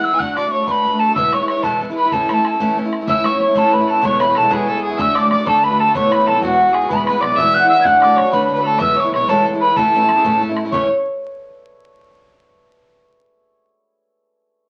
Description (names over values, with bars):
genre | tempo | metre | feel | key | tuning
celtic folk, Celtic jig | 125 BPM (dotted quarters) | 6/8 | straight | A major | A4 = 436 Hz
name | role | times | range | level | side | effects
mellow hollow wooden whistle | melody | 0.0-10.9 s | F#5 to G#6 | -19 LUFS | equal | none
warm fiddle | second line | 0.0-10.9 s | F#4 to G#5 | -24 LUFS | equal | none
picked steel-string acoustic guitar | accompaniment | 0.0-10.9 s | E2 to F#4 | -24 LUFS | equal | none
bodhran | percussion | 0.2-10.9 s | none | -32 LUFS | equal | none
cimbalom | second line | 3.1-12.3 s | F#4 to F#5 | -21 LUFS | equal | none
upright bass | bass | 3.1-10.9 s | E1 to E3 | -34 LUFS | equal | none
room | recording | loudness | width
wet studio reverb, RT60 0.7 s | very old 78 rpm record, vinyl crackle | -16 LUFS | mono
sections
0.0-3.1 A section; 3.1-10.7 A section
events
none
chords
0.2 D; 1.2 E; 2.1 A; 4.0 E; 5.0 D; 5.9 Esus4; 6.4 Eadd9; 6.9 E; 7.9 D; 8.8 E; 9.8 A